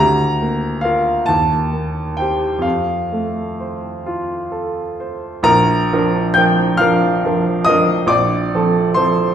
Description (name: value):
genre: classical, romantic nocturne for solo piano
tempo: 42-49 BPM (dotted quarters)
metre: 6/8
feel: rubato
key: Bb major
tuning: A4 = 441 Hz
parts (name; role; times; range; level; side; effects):
- clear baby grand piano; solo; 0.0-9.3 s; Bb1 to G6; -14 LUFS; equal; none
room: wet recital hall reverb, RT60 1.3 s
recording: heard from further back in the room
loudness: -14 LUFS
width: side -9 dB against mid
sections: 0.0-5.4 A section; 5.4-9.3 B section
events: none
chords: 0.0 Bb/D; 1.3 Cm7/Eb; 2.6 F; 5.4 Bb; 8.1 F/Bb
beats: | 0.00 1.27 | 2.64 4.04 | 5.44 6.78 | 8.08